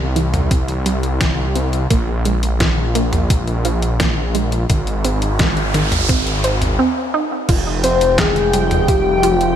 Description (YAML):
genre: synthwave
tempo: 86 BPM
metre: 4/4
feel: straight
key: F minor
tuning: A4 = 437 Hz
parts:
  - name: wide unison pluck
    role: arpeggios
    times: 0.0-9.5 s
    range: Eb3 to C5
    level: -23 LUFS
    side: right 3 dB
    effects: digital delay
  - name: wide detuned saw bass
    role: bass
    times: 0.0-9.6 s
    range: F1 to C2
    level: -19 LUFS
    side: equal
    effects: chorus
  - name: detuned 8-bit digital drum machine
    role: drums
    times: 0.2-9.5 s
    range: crash cymbal, handclaps, hi-hat, snare drum, toms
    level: -21 LUFS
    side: equal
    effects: studio reverb, gated reverb
  - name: electronic kick drum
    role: drums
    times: 0.5-9.0 s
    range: none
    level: -18 LUFS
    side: equal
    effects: studio reverb
  - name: noise sweep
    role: sound effects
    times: 5.0-7.5 s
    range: none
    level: -23 LUFS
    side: equal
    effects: none
  - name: chorused pulse-width pad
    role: sustained chords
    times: 7.5-9.6 s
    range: F3 to G5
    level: -21 LUFS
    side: equal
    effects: none
  - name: soft octave-layered synth lead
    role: melody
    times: 7.8-9.6 s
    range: F4 to C5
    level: -17 LUFS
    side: left 3 dB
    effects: chorus, cassette tape, ping-pong delay
  - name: soft synth bell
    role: second line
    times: 7.8-9.6 s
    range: F4 to C5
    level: -22 LUFS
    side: left 1 dB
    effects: none
room: light reverb, digital ambience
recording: none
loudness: -14 LUFS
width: side -9 dB against mid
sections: 0.0-7.5 A section; 7.5-9.6 B section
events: filter sweep on synth arpeggio sound 0.0-7.5; noise sweep 5.0-7.5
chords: 0.0 C; 1.9 Bb5; 4.7 Ab; 7.5 Fmadd9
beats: 0.51 1.21 | 1.91 2.60 3.30 4.00 | 4.70 5.39 6.09 6.79 | 7.49 8.19 8.88